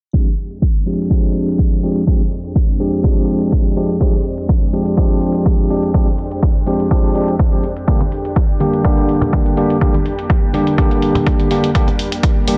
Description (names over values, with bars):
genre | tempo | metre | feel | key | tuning
deep house | 124 BPM | 4/4 | swing 54% on 16ths | F dorian | A4 = 444 Hz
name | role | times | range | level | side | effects
soft string machine | sustained chords | 0.4-12.6 s | F2 to G4 | -27 LUFS | equal | ensemble chorus, vintage 12-bit sampler grit, sidechain pumping
tine electric piano | stabs | 0.1-12.6 s | D3 to G4 | -20 LUFS | equal | sidechain pumping, low-pass filter, tape echo
electronic hi-hat | drums | 0.1-12.6 s | none | -32 LUFS | equal | overdrive
electronic kick drum | drums | 0.1-12.3 s | none | -17 LUFS | equal | overdrive
congas | percussion | 8.0-12.6 s | none | -26 LUFS | equal | none
room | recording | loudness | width
light reverb | dense, heavily limited modern master, low-pass filter | -16 LUFS | mono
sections
0.1-12.6 A section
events
filter sweep 0.1-12.6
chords
0.1 Fm69; 7.9 Gm/F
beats
| 0.14 0.62 1.10 1.59 | 2.07 2.56 3.04 3.52 | 4.01 4.49 4.98 5.46 | 5.94 6.43 6.91 7.39 | 7.88 8.36 8.85 9.33 | 9.81 10.30 10.78 11.27 | 11.75 12.23